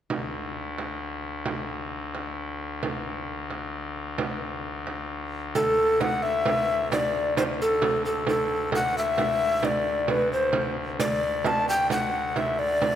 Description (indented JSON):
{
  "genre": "medieval dance",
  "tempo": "88 BPM (dotted quarters)",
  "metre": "6/8",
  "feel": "straight",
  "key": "D mixolydian",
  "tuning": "A4 = 440 Hz",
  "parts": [
    { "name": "pipe organ, trumpet", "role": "drone", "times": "0.1-13.0 s", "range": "D2", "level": "-32 LUFS", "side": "left 2 dB", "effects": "none" },
    { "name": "frame drum", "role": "percussion", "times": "0.1-13.0 s", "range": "none", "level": "-30 LUFS", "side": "right 4 dB", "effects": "none" },
    { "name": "breathy mellow tenor recorder", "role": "melody", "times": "5.6-13.0 s", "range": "A4 to A5", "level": "-23 LUFS", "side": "left 1 dB", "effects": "none" }
  ],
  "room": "wet concert hall reverb, RT60 2.1 s",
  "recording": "none",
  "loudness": "-24 LUFS",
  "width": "side -10 dB against mid",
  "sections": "0.1-5.6 A section; 5.6-13.0 B section",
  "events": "none",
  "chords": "none"
}